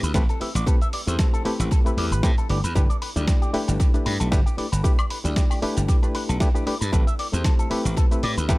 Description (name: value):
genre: nu-disco, nu disco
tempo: 115 BPM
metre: 4/4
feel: swing 55% on 16ths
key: A minor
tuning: A4 = 440 Hz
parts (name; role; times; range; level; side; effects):
- barky reed electric piano; accompaniment; 0.0-8.6 s; A3 to D5; -28 LUFS; left 1 dB; overdrive, fast tremolo, tape echo
- electric guitar with an envelope filter; riff; 0.0-8.6 s; G3 to E5; -32 LUFS; left 2 dB; wide subtle chorus, tape echo
- glassy slap bass; bass; 0.0-8.6 s; G1 to A2; -24 LUFS; equal; sidechain pumping
- dusty soul sampler-style drum kit; drums; 0.0-8.6 s; hi-hat, shaker, snare drum, woodblock; -31 LUFS; equal; tape echo
- electronic kick drum; drums; 0.1-8.6 s; none; -20 LUFS; equal; none
room: little or no reverb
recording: echo-heavy mix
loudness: -19 LUFS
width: side -20 dB against mid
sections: 0.0-8.6 A section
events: none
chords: 0.0 Am7; 2.5 G6; 6.9 Am7